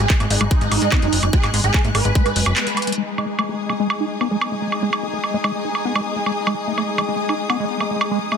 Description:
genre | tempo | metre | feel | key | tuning
psychedelic trance | 146 BPM | 4/4 | straight | G# phrygian | A4 = 438 Hz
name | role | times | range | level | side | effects
swarming rave lead | melody | 0.0-2.9 s | D#4 to B4 | -24 LUFS | right 4 dB | chorus, phaser, sidechain pumping, dub echo
pulsing gated texture | sustained chords | 0.0-8.4 s | G#3 | -28 LUFS | left 2 dB | chorus, built-in reverb, sidechain pumping
plucky analog bass | bass | 0.0-2.5 s | F#1 to G#2 | -20 LUFS | equal | none
drum and bass drum kit | drums | 0.0-8.4 s | handclaps, hi-hat, woodblock | -23 LUFS | right 2 dB | low-pass filter on snare, low-pass filter on hats, low-pass filter on perc, low-pass filter on room
warm studio string section | texture | 0.0-8.4 s | D#4 to F#6 | -27 LUFS | left 3 dB | sidechain pumping
liquid acid bass | riff | 0.1-8.4 s | G#3 to D#4 | -26 LUFS | moving between left 5 dB and right 4 dB | phaser, auto-pan, sidechain pumping, ping-pong delay
electronic kick drum | drums | 0.1-2.2 s | none | -17 LUFS | equal | none
room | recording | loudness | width
light reverb | dense, heavily limited modern master | -17 LUFS | side -7 dB against mid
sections
0.0-3.0 A section; 3.0-8.4 B section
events
filter sweep on acid bass 0.0-3.0, 3.0-8.4; break 2.6-3.0; band accent 2.6; drum fill 2.8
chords
0.0 G#5

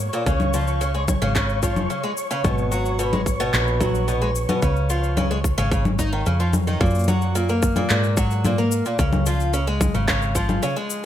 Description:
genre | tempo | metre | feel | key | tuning
folktronica | 110 BPM | 4/4 | straight | Db mixolydian | A4 = 439 Hz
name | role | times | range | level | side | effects
hollow-body short-scale fingered electric bass | bass | 0.0-10.6 s | Ab1 to Ab2 | -22 LUFS | equal | none
flickering grainy texture | texture | 0.0-6.8 s | Db5 to Db6 | -30 LUFS | left 2 dB | built-in reverb
picked twelve-string acoustic guitar | arpeggios | 0.1-11.0 s | Bb2 to Eb4 | -24 LUFS | equal | digital delay
electronic shaker, congas and handclaps | drums | 0.1-11.0 s | none | -26 LUFS | left 3 dB | overdrive
electronic kick drum | drums | 0.3-10.5 s | none | -23 LUFS | equal | overdrive
room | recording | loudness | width
little or no reverb | none | -19 LUFS | side -11 dB against mid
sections
0.0-6.8 A section; 6.8-11.1 B section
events
kick drops out 6.3-6.8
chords
0.3 Db; 2.4 Abm7; 4.6 Dbadd9; 6.8 Gb; 9.0 Db

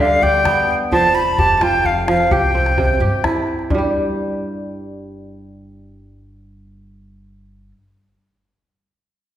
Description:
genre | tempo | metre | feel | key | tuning
west african traditional, West African string and xylophone music | 86 BPM (dotted quarters) | 12/8 | straight | unclear | A4 = 440 Hz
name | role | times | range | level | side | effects
breathy bright concert flute | melody | 0.0-3.2 s | F5 to B5 | -16 LUFS | equal | none
kora | arpeggios | 0.0-7.8 s | G2 to D5 | -19 LUFS | right 2 dB | none
upright bass | bass | 0.0-7.7 s | F1 to G2 | -23 LUFS | equal | none
calabash | percussion | 0.3-3.9 s | none | -24 LUFS | left 2 dB | none
room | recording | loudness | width
wet recital hall reverb, RT60 1.6 s | recorded in a church or concert hall | -14 LUFS | side -11 dB against mid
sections
0.0-3.7 A section; 3.7-6.5 B section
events
none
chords
0.0 G; 0.9 F5; 2.3 C; 3.7 N.C.

